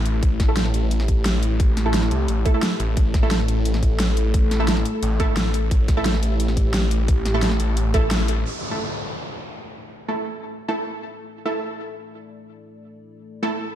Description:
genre	dark technical drum and bass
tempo	175 BPM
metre	4/4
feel	straight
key	unclear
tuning	A4 = 440 Hz
part	dark analog pad	sustained chords	0.0-13.8 s	A3 to A5	-30 LUFS	left 1 dB	chorus, sidechain pumping
part	snarling distorted saw bass	bass	0.0-8.4 s	A1 to C2	-21 LUFS	equal	distortion, tube saturation, sidechain pumping
part	dubstep drum kit	drums	0.1-8.4 s	hi-hat, snare drum	-26 LUFS	equal	studio reverb
part	electronic kick drum	drums	0.2-8.0 s	none	-19 LUFS	equal	studio reverb
part	orchestra-hit-like synth stab	stabs	0.5-13.5 s	A3 to A4	-27 LUFS	right 2 dB	built-in reverb, ping-pong delay
part	downlifter	sound effects	8.5-11.2 s	none	-31 LUFS	left 1 dB	none
room	light reverb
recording	dark, warm production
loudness	-19 LUFS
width	side -11 dB against mid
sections	0.0-8.5 A section; 8.5-13.8 B section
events	filter sweep on synth stab 0.0-8.5; kick drops out 8.1-8.5; band accent 8.1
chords	0.0 A5

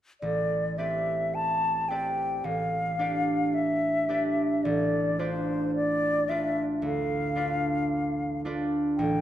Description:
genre	classical, impressionist duo for flute and harp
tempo	55 BPM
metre	4/4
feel	rubato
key	unclear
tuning	A4 = 440 Hz
part	concert flute	melody	0.2-9.2 s	C5 to A5	-28 LUFS	left 2 dB	none
part	concert harp	accompaniment	0.2-9.2 s	A1 to D5	-28 LUFS	right 1 dB	none
room	wet recital hall reverb, RT60 1.6 s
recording	none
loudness	-25 LUFS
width	side -11 dB against mid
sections	0.2-9.2 A section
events	none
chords	0.2 Am11; 2.4 Gadd9/A; 4.7 Dm6/A

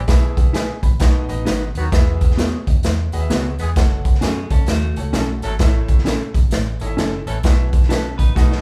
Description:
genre	uptempo 1960s-style soul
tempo	131 BPM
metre	4/4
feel	swing 63% on 8ths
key	E major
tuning	A4 = 440 Hz
part	warm horn section	second line	0.0-7.4 s	B2 to A4	-33 LUFS	equal	none
part	vintage muted fingered electric bass	bass	0.0-8.6 s	F#1 to F#2	-25 LUFS	equal	none
part	bright concert grand piano	accompaniment	0.1-8.6 s	A2 to B5	-32 LUFS	equal	none
part	raw garage drum kit	drums	0.1-8.6 s	hi-hat, kick drum, snare drum	-19 LUFS	equal	none
part	tambourine	percussion	0.1-8.5 s	none	-44 LUFS	equal	none
part	mellow electric guitar	stabs	0.5-8.1 s	B3 to B4	-27 LUFS	equal	none
part	semi-hollow electric guitar	riff	4.2-8.6 s	A3 to B4	-30 LUFS	equal	warbly pitch drift
room	light reverb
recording	band playing live in one room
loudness	-18 LUFS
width	mono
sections	0.0-8.6 A section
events	drum fill 8.4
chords	0.1 E/B; 1.0 B; 1.9 Eadd9; 3.8 F#m; 5.6 A; 7.4 Bsus4

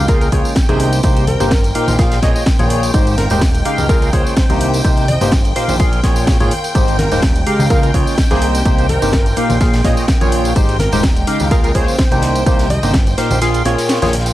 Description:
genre	piano house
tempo	126 BPM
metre	4/4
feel	swing 54% on 16ths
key	unclear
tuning	A4 = 439 Hz
part	string machine, violins	sustained chords	0.0-14.3 s	G5	-26 LUFS	equal	ensemble chorus, sidechain pumping
part	percussive organ stab	riff	0.0-14.1 s	Ab2 to F5	-18 LUFS	equal	analog chorus, sidechain pumping
part	fat analog bass	bass	0.0-14.3 s	Eb1 to Db2	-18 LUFS	equal	sidechain pumping
part	airy breathy pad	texture	0.0-14.3 s	Ab3 to C6	-28 LUFS	equal	none
part	plucky unison lead	melody	0.1-13.4 s	Ab4 to Eb5	-24 LUFS	equal	analog delay
part	big rock drum kit	drums	0.1-14.3 s	hi-hat, snare drum	-34 LUFS	left 1 dB	none
part	electronic kick drum	drums	0.1-13.0 s	none	-15 LUFS	equal	none
part	house drum kit	drums	0.1-14.3 s	hi-hat, snare drum	-23 LUFS	equal	overdrive
part	tambourine and congas	percussion	0.1-14.3 s	none	-25 LUFS	left 1 dB	none
room	digital ambience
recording	dry, gritty hardware recording, cassette tape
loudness	-12 LUFS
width	side -15 dB against mid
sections	0.0-14.3 A section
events	kick drops out 13.4-14.3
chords	0.1 Db6; 0.8 Cm7; 2.0 Bbm7; 2.9 Abmaj7; 3.9 Db6; 4.6 Cm7; 5.8 Bbm7; 6.8 Abmaj7; 7.7 Db6; 8.4 Cm7; 9.6 Bbm7; 10.6 Abmaj7; 11.5 Db6; 12.2 Cm7; 13.4 Bbm7

